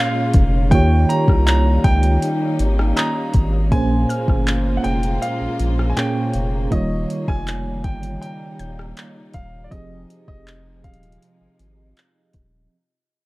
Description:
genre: contemporary R&B.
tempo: 80 BPM.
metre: 4/4.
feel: straight.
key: F minor.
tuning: A4 = 440 Hz.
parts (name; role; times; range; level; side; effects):
clear grand piano; melody; 0.0-12.3 s; D5 to Bb5; -26 LUFS; equal; none.
FM electric piano with tremolo; accompaniment; 0.0-12.7 s; Bb2 to Eb5; -22 LUFS; right 2 dB; none.
warm studio string section; sustained chords; 0.0-12.7 s; C3 to F4; -29 LUFS; left 2 dB; none.
saturated sub bass; bass; 0.3-12.7 s; Eb1 to Eb2; -19 LUFS; equal; none.
smooth R&B drum kit; drums; 0.3-12.5 s; handclaps, hi-hat, kick drum, rim click; -19 LUFS; equal; none.
mallet-like synth pluck; texture; 3.0-10.1 s; Eb6 to G6; -35 LUFS; left 2 dB; chorus, analog delay.
room: light reverb, digital ambience.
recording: dark, warm production.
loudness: -16 LUFS.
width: side -20 dB against mid.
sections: 0.0-12.7 A section.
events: fade-out 0.0-12.7.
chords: 0.0 Bbm7; 0.7 Eb7; 3.7 Bbm7; 6.7 Eb7; 9.7 Fm7.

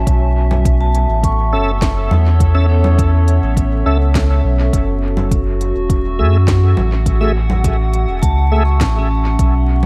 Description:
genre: ambient dub.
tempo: 103 BPM.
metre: 4/4.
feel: straight.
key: unclear.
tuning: A4 = 440 Hz.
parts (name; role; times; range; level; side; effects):
warbly tape-like pad; sustained chords; 0.0-9.9 s; B3 to A5; -26 LUFS; equal; chorus, built-in reverb.
vibraphone with medium hard mallets; arpeggios; 0.0-9.9 s; C#4 to C#6; -26 LUFS; equal; dub echo.
warm sub bass; bass; 0.0-9.9 s; E1 to F#2; -16 LUFS; equal; none.
wind-like tuned noise texture; texture; 0.0-0.1, 9.4-9.9 s; G#3 to G#5; -35 LUFS; equal; built-in reverb.
electronic kick drum; drums; 0.1-9.5 s; none; -20 LUFS; equal; none.
organic electronic drum kit; drums; 0.1-9.9 s; congas, hi-hat, snare drum; -28 LUFS; equal; dub echo.
tonewheel organ; stabs; 1.5-8.6 s; A3 to E5; -26 LUFS; equal; chorus vibrato, slow rotary speaker, dub echo.
room: digital ambience.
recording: vinyl crackle.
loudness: -15 LUFS.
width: mono.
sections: 0.1-9.9 A section.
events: none.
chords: 0.1 B9sus4; 4.7 F#m9.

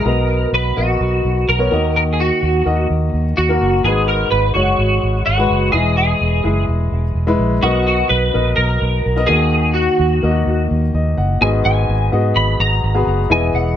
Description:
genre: piano-driven pop.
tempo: 127 BPM.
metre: 4/4.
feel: straight.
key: G# minor.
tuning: A4 = 441 Hz.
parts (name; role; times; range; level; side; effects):
twelve-string electric guitar; melody; 0.0-13.8 s; F#4 to B5; -18 LUFS; equal; ensemble chorus.
clear grand piano; accompaniment; 0.0-13.8 s; G#2 to F#5; -19 LUFS; left 2 dB; none.
vintage muted fingered electric bass; bass; 0.1-13.7 s; E1 to G#2; -17 LUFS; right 1 dB; none.
room: light reverb.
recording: none.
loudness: -14 LUFS.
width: side -10 dB against mid.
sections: 0.0-11.4 A section; 11.4-13.8 B section.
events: none.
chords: 0.1 Bmaj7; 1.7 D#m; 3.8 G#m7; 5.7 Emaj7; 7.6 Bmaj7; 9.3 D#m; 11.4 G#m7.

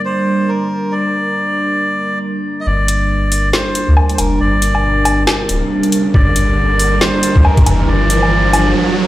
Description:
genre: deep dubstep.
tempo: 138 BPM.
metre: 4/4.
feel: swing 58% on 16ths, half-time.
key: G minor.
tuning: A4 = 442 Hz.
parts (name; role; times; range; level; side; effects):
dark analog pad; sustained chords; 0.0-9.1 s; G3 to Bb4; -18 LUFS; right 1 dB; chorus, phaser.
melodica; melody; 0.1-8.7 s; Bb4 to Eb5; -18 LUFS; equal; dub echo.
soft dub sub bass; bass; 2.7-8.7 s; D1 to D2; -15 LUFS; equal; none.
riser; sound effects; 4.1-9.1 s; none; -20 LUFS; right 2 dB; none.
garage drum kit; drums; 2.9-8.6 s; hi-hat, snare drum, woodblock; -18 LUFS; left 1 dB; low-pass filter on hats, small room reverb, low-pass filter on snare, low-pass filter on perc.
electronic kick drum; drums; 6.1-7.6 s; none; -11 LUFS; equal; small room reverb.
room: light reverb, digital ambience.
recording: played on a big sound system in a bare room, large studio reverb.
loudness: -12 LUFS.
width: side -15 dB against mid.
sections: 0.0-2.7 A section; 2.7-9.1 B section.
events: filter sweep on analog synth pad 0.0-2.7; build-up 2.7-9.1; riser 4.1-9.1; break 8.8-9.1.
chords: 0.0 Gm.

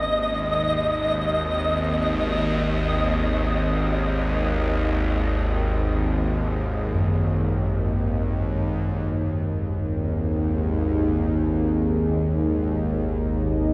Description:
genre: dark ambient drone.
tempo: free time.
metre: none.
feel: none.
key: unclear.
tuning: A4 = 440 Hz.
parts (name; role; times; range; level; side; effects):
gamelan-type bossed gongs; arpeggios; 0.0-1.1, 7.0-12.5 s; F#2 to C#4; -31 LUFS; equal; tape echo.
bowed-like drone; drone; 0.0-13.7 s; G#1 to D#2; -25 LUFS; equal; built-in reverb.
flickering grainy texture; texture; 0.0-9.1 s; D#5; -29 LUFS; equal; built-in reverb.
dark analog pad; sustained chords; 9.6-13.7 s; D#4 to D#5; -29 LUFS; equal; chorus.
room: wet huge ambient reverb, RT60 7.5 s.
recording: none.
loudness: -24 LUFS.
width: mono.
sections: 0.0-9.1 A section; 9.1-13.7 B section.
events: fade-in on synth drone 0.0-9.1; fade-out on synth texture 0.0-9.1.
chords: 0.0 G#5.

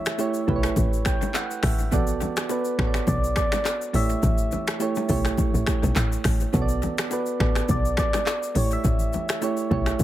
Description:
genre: afrobeats.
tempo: 104 BPM.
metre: 4/4.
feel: swing 55% on 16ths.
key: unclear.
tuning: A4 = 440 Hz.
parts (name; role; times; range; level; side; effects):
soft struck synth lead; melody; 0.0-10.0 s; B4 to E5; -30 LUFS; left 2 dB; chorus, tape echo.
soft electric-piano-like synth keys; accompaniment; 0.0-10.0 s; A3 to G5; -28 LUFS; right 5 dB; chorus, tape echo.
afro-pop drum kit; drums; 0.1-10.0 s; finger snaps, handclaps, hi-hat, kick drum, rim click, shaker; -26 LUFS; left 1 dB; none.
bongos and congas; percussion; 0.2-10.0 s; none; -34 LUFS; left 5 dB; tape echo.
woody log drum bass; bass; 0.5-10.0 s; A1 to B1; -25 LUFS; equal; none.
room: light reverb, digital ambience.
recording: echo-heavy mix.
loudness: -21 LUFS.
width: side -13 dB against mid.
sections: 0.0-10.0 A section.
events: synth keys fill 0.8-1.9.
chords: 0.0 A7; 1.9 Bm7; 3.9 A7; 6.5 Bm7; 8.6 A7.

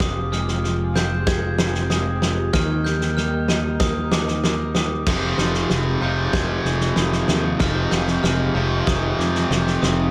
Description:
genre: post-rock.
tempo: 95 BPM.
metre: 4/4.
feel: straight.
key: F dorian.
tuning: A4 = 440 Hz.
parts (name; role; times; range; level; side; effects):
chorused pulse-width pad; sustained chords; 0.0-10.1 s; Eb4 to F5; -34 LUFS; equal; none.
glockenspiel with hard plastic mallets; arpeggios; 0.0-10.1 s; D6 to Ab6; -32 LUFS; equal; analog delay.
twelve-string electric guitar; arpeggios; 0.0-10.1 s; F2 to Eb4; -32 LUFS; equal; none.
fingered electric bass; bass; 0.0-10.1 s; F1 to F2; -27 LUFS; equal; none.
loose indie drum kit; drums; 0.0-10.0 s; crash cymbal, kick drum, snare drum; -25 LUFS; equal; none.
distorted electric guitar; riff; 5.1-10.1 s; F2 to F3; -24 LUFS; equal; distortion.
room: light reverb, small room ambience.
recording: none.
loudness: -21 LUFS.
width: mono.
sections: 0.0-5.1 A section; 5.1-10.1 B section.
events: none.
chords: 0.0 Fmadd9; 2.5 Eb; 5.1 Fm7.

